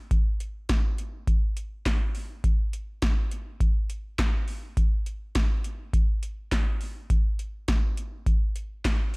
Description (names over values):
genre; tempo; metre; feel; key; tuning
pop; 103 BPM; 4/4; straight; none; none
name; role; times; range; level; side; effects
electro analog drum machine; drums; 0.1-9.2 s; handclaps, hi-hat, kick drum, snare drum; -24 LUFS; equal; overdrive
room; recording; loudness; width
little or no reverb; dry, gritty hardware recording; -25 LUFS; side -30 dB against mid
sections
0.0-9.2 A section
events
none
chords
none